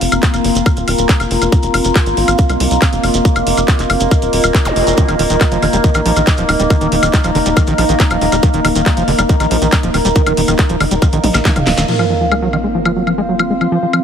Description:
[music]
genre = psychedelic trance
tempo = 139 BPM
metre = 4/4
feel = straight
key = unclear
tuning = A4 = 440 Hz
[part]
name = overtone-sweeping drone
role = sustained chords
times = 0.0-14.0 s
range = Bb3 to C5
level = -18 LUFS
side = equal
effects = chorus, built-in reverb, phaser, sidechain pumping
[part]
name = tight sequencer bass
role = bass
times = 0.0-11.8 s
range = Eb1 to C2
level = -18 LUFS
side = equal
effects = none
[part]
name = garage drum kit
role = drums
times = 0.0-14.0 s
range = crash cymbal, handclaps, hi-hat, snare drum, toms, woodblock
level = -19 LUFS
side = left 2 dB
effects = none
[part]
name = warbly tape-like pad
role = texture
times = 0.0-14.0 s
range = Bb3 to C6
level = -19 LUFS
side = equal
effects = chorus, built-in reverb, sidechain pumping
[part]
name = shekere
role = percussion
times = 0.1-11.9 s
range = none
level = -26 LUFS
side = right 4 dB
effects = none
[part]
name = electronic kick drum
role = drums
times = 0.2-11.5 s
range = none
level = -12 LUFS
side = equal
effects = none
[part]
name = zap and sub drop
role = sound effects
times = 4.7-4.8, 11.9-13.6 s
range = none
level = -22 LUFS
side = equal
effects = none
[part]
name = overdriven acid bass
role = riff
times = 5.0-14.0 s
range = D3 to Eb4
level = -18 LUFS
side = right 1 dB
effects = distortion, auto-pan, sidechain pumping, digital delay
[sound]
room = light reverb, digital ambience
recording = heavily compressed radio sound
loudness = -11 LUFS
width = side -8 dB against mid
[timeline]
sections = 0.0-11.9 A section; 11.9-14.0 B section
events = drum fill 11.2-11.9; band accent 11.8; impact 11.9-13.6; filter sweep on acid bass 11.9-14.0; filter sweep on synth drone 11.9-14.0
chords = 0.0 F5; 5.0 Eb5; 11.9 F5

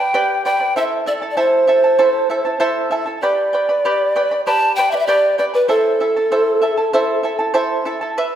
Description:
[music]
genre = andean folk, Andean ensemble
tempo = 97 BPM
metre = 4/4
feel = straight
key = A minor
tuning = A4 = 440 Hz
[part]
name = reedy pan flute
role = melody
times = 0.0-7.5 s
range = A4 to A5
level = -16 LUFS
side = equal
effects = slapback echo
[part]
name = charango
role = accompaniment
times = 0.0-8.4 s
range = E4 to B5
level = -19 LUFS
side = right 2 dB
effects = none
[sound]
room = moderate recital hall reverb, RT60 1.4 s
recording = none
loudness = -14 LUFS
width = side -10 dB against mid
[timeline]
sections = 0.0-8.2 A section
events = none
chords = 0.0 G; 0.8 Am; 3.2 G; 5.7 Am

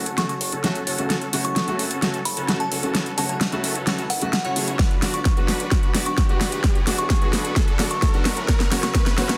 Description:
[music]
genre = EDM, festival progressive house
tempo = 130 BPM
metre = 4/4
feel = straight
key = F# minor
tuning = A4 = 437 Hz
[part]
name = warm grand piano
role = accompaniment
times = 0.0-9.4 s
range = C#3 to G#4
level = -31 LUFS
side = equal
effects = sidechain pumping
[part]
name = lush unison pad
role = sustained chords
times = 0.0-9.4 s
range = F#4 to C#6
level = -38 LUFS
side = equal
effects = none
[part]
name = dense compressed supersaw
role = riff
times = 0.0-9.3 s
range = C#4 to D5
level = -33 LUFS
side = equal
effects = vintage 12-bit sampler grit, sidechain pumping, low-pass filter
[part]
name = fat analog bass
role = bass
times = 0.0-9.4 s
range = E1 to B1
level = -39 LUFS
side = equal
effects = none
[part]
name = riser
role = sound effects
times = 2.4-9.4 s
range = none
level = -37 LUFS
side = equal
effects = none
[part]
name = big-room dance drum kit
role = drums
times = 0.1-9.4 s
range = hi-hat, snare drum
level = -26 LUFS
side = equal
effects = overdrive
[part]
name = glassy synth bell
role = melody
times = 0.2-9.4 s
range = F#5 to C#6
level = -32 LUFS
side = equal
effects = chorus, dub echo
[part]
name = electronic kick drum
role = drums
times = 4.8-9.0 s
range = none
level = -23 LUFS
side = equal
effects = overdrive
[sound]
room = light reverb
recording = dense, heavily limited modern master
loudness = -22 LUFS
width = mono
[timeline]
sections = 0.0-9.4 A section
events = build-up 0.0-9.4; drum fill 0.0-9.4; filter sweep on supersaw synth 0.0-9.4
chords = 0.0 F#m; 4.8 Bm; 8.5 Aadd9

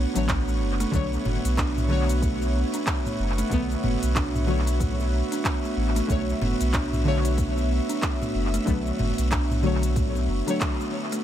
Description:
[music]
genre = organic downtempo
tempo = 93 BPM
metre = 4/4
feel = swing 60% on 16ths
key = B minor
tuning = A4 = 440 Hz
[part]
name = deep mellow chord stab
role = accompaniment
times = 0.0-11.2 s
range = D3 to C#5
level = -31 LUFS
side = left 2 dB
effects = chorus, sidechain pumping, analog delay
[part]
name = airy breathy pad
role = sustained chords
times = 0.0-11.2 s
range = B3 to E5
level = -32 LUFS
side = right 2 dB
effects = chorus, sidechain pumping
[part]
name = warm sub bass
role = bass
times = 0.0-10.4 s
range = F#1 to B1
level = -25 LUFS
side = equal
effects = none
[part]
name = buzzing kalimba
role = arpeggios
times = 0.2-11.2 s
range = A3 to F#4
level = -29 LUFS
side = right 1 dB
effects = dub echo
[part]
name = afro-pop drum kit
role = drums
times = 0.2-11.2 s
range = cabasa, handclaps, hi-hat, toms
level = -31 LUFS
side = equal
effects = analog delay
[part]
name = electronic kick drum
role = drums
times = 0.3-10.8 s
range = none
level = -28 LUFS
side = equal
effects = none
[sound]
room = digital ambience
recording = echo-heavy mix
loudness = -22 LUFS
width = side -11 dB against mid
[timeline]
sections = 0.0-11.2 A section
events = band accent 10.6-10.9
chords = 0.0 Bm7

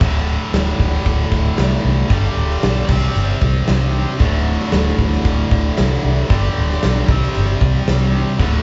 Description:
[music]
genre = hard rock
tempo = 114 BPM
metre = 4/4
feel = straight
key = unclear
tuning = A4 = 438 Hz
[part]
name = heavy high-gain guitar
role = riff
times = 0.0-8.6 s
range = D2 to C4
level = -23 LUFS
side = equal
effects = distortion
[part]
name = vintage muted fingered electric bass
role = bass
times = 0.0-8.6 s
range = D1 to C2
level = -20 LUFS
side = equal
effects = none
[part]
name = big rock drum kit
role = drums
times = 0.0-8.5 s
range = crash cymbal, kick drum, snare drum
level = -21 LUFS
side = equal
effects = none
[sound]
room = moderate large studio reverb, RT60 1.0 s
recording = band playing live in one room, nothing above 7.7 kHz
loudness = -17 LUFS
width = mono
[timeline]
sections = 0.0-8.6 A section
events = none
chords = 0.0 D5; 2.1 G; 2.9 C5; 4.2 D5; 6.3 G; 7.1 C5

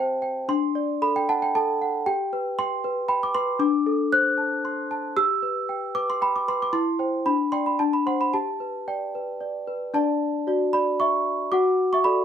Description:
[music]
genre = classical, lullaby for celesta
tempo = 115 BPM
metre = 3/4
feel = straight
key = G major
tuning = A4 = 441 Hz
[part]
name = celesta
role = solo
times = 0.0-12.2 s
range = C4 to F#6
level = -22 LUFS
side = equal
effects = none
[sound]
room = moderate studio reverb, RT60 0.6 s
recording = close, detailed microphones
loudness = -22 LUFS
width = side -8 dB against mid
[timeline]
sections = 0.0-10.0 A section; 10.0-12.2 B section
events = none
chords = 0.5 D7; 2.1 G; 3.6 D7; 5.2 G; 6.7 C/E; 7.3 G/D; 7.8 D7; 8.3 G; 10.0 D; 11.5 D/F#

